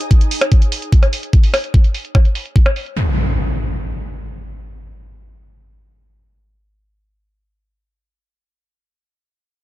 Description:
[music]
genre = psychedelic trance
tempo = 147 BPM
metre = 4/4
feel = straight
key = none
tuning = none
[part]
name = electronic hi-hat and percussion blips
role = drums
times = 0.0-2.9 s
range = none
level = -21 LUFS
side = equal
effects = low-pass filter on snare, low-pass filter on hats, low-pass filter on cymbals, low-pass filter on perc, low-pass filter on room
[part]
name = electronic kick drum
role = drums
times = 0.1-2.6 s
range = none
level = -11 LUFS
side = equal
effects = overdrive
[part]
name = impact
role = sound effects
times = 3.0-7.7 s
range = none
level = -21 LUFS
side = equal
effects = none
[sound]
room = little or no reverb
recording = none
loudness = -13 LUFS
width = side -17 dB against mid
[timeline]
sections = 0.0-3.0 A section; 3.0-6.2 B section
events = none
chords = none

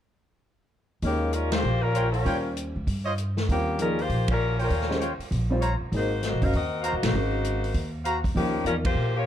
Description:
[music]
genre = jazz, big band swing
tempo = 197 BPM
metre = 4/4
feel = swing 63% on 8ths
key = Eb mixolydian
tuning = A4 = 440 Hz
[part]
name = clear concert grand piano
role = accompaniment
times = 1.0-8.8 s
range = F3 to Eb5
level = -30 LUFS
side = equal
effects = none
[part]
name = upright bass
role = bass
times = 1.0-9.3 s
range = Gb1 to Bb2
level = -27 LUFS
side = equal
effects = none
[part]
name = swinging big-band drum kit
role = drums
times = 1.0-8.9 s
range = hi-hat, kick drum, ride cymbal, snare drum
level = -31 LUFS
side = equal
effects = none
[part]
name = bright saxophone section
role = melody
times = 1.1-9.3 s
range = F3 to F5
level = -28 LUFS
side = left 3 dB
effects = plate reverb
[part]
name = clear trumpet section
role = stabs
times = 1.9-8.2 s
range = F4 to Bb5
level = -30 LUFS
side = equal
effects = none
[sound]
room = light reverb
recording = dark, warm production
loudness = -23 LUFS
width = side -10 dB against mid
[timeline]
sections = 1.0-9.3 A section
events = band accent 1.5, 4.2, 7.0, 8.8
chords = 1.0 Eb13; 5.9 Ab9; 8.4 Eb13

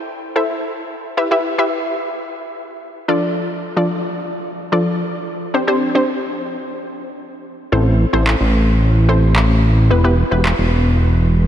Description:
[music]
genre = dance-pop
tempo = 110 BPM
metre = 4/4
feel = straight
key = A minor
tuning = A4 = 441 Hz
[part]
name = wide unison pluck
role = accompaniment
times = 0.0-11.1 s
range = F3 to E5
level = -19 LUFS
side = left 1 dB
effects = none
[part]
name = chorused synth bass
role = bass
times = 7.7-11.5 s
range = E1 to A1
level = -13 LUFS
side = equal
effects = none
[part]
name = electronic handclaps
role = drums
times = 8.3-10.6 s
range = none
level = -22 LUFS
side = equal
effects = none
[sound]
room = moderate huge ambient reverb, RT60 4.7 s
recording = dreamy mix soaked in reverb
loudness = -14 LUFS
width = side -10 dB against mid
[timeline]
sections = 0.0-11.5 A section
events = none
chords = 0.0 Am; 1.2 Em; 3.1 Dm/F; 5.5 Gsus4; 7.7 Am; 9.9 Em

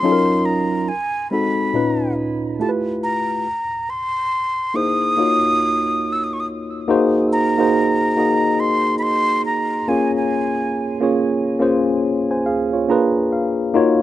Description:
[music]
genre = R&B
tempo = 70 BPM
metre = 4/4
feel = swing 62% on 16ths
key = unclear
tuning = A4 = 438 Hz
[part]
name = breathy concert flute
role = melody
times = 0.0-11.0 s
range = Ab5 to Fb6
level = -21 LUFS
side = equal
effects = tape echo
[part]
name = tine electric piano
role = accompaniment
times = 0.0-14.0 s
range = Bb2 to Bb5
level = -18 LUFS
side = moving between left 4 dB and right 4 dB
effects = auto-pan
[sound]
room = little or no reverb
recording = rough home demo mix, nothing above 10.5 kHz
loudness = -16 LUFS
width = side -13 dB against mid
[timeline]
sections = 0.0-6.9 A section; 6.9-14.0 B section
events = tine electric piano fill 12.5-13.7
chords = 0.0 Ebm9; 0.9 Ab7b9; 1.7 Db13; 2.6 G13; 3.5 C7alt; 5.2 Ebm9; 6.9 Ab9; 9.9 Bbm7; 12.9 Bb7b9

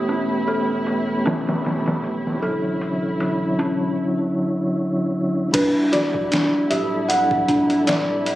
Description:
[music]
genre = trip hop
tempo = 77 BPM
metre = 4/4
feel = swing 55% on 16ths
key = E dorian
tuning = A4 = 436 Hz
[part]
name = mellow tonewheel organ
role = accompaniment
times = 0.0-8.4 s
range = D3 to A4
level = -23 LUFS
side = equal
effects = chorus vibrato, tremolo, tape echo
[part]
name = muted symphonic violin section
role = sustained chords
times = 0.0-8.4 s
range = E4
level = -30 LUFS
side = equal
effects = none
[part]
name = dark detuned synth bell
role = arpeggios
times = 0.0-8.4 s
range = C#4 to A4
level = -24 LUFS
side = equal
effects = chorus, vintage 12-bit sampler grit, digital delay
[part]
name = soft dub sub bass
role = bass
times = 0.0-8.4 s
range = D1 to E1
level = -36 LUFS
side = equal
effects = none
[part]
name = trip hop sampler-style drum kit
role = drums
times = 0.1-8.4 s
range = crash cymbal, hi-hat, kick drum, snare drum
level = -25 LUFS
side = equal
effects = overdrive, low-pass filter on hats, small room ambience, low-pass filter on snare, low-pass filter on cymbals, low-pass filter on kick
[part]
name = felt-muted upright piano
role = melody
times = 5.5-8.4 s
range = B4 to F#5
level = -22 LUFS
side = equal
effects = tape echo
[sound]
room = light reverb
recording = recorded on a phone in the room, studio reverb, compression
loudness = -18 LUFS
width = side -15 dB against mid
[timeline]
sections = 0.0-5.5 A section; 5.5-8.4 B section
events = none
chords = 0.0 A9/E; 2.4 Dmaj9/E; 5.5 Em9

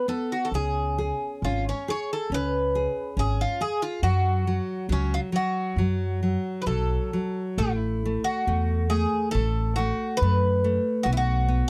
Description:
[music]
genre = fado-style ballad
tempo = 65-71 BPM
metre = 2/4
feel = rubato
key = F# harmonic minor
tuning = A4 = 443 Hz
[part]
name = Greek bouzouki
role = melody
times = 0.0-11.7 s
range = C#4 to C#5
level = -30 LUFS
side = equal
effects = none
[part]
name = nylon-string guitar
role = accompaniment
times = 0.0-11.7 s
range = F#3 to G#4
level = -32 LUFS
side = equal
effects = none
[part]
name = upright bass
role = bass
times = 0.5-11.6 s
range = G#1 to F#2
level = -28 LUFS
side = equal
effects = none
[sound]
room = light reverb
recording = none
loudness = -26 LUFS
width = mono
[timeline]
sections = 0.0-7.6 A section; 7.6-11.7 B section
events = none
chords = 0.0 N.C.; 0.5 C#5; 4.0 F#m; 7.6 Asus2; 11.1 B5

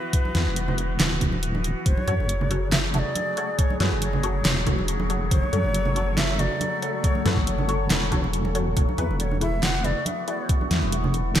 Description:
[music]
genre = deep dubstep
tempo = 139 BPM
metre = 4/4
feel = swing 55% on 16ths, half-time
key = F# minor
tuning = A4 = 445 Hz
[part]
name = breathy bright shakuhachi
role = melody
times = 0.0-10.5 s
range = B4 to F#5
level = -31 LUFS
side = equal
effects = dub echo
[part]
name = overtone-sweeping drone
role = sustained chords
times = 0.0-11.4 s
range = C#3 to A4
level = -31 LUFS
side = left 1 dB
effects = chorus, built-in reverb
[part]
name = dubstep drum kit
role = drums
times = 0.1-11.4 s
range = handclaps, hi-hat, snare drum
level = -26 LUFS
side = equal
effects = overdrive, gated reverb
[part]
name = electronic kick drum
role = drums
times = 0.1-10.6 s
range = none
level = -23 LUFS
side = equal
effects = none
[part]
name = deep soft wobble bass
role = bass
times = 0.3-11.4 s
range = D1 to F#2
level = -25 LUFS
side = equal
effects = chorus
[part]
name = congas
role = percussion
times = 0.3-11.4 s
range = none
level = -31 LUFS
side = right 3 dB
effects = none
[part]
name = flickering grainy texture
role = texture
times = 3.0-11.4 s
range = A3 to C#6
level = -35 LUFS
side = left 2 dB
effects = built-in reverb, wide subtle chorus
[part]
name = filtered dub chord stab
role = stabs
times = 2.1-10.4 s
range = E4 to C#5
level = -33 LUFS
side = left 3 dB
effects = phaser, ensemble chorus, dub echo
[sound]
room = light reverb, digital ambience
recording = bright 1980s-style digital production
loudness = -21 LUFS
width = side -10 dB against mid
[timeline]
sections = 0.0-11.4 A section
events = none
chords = 0.0 E5; 1.9 F#m; 8.8 E

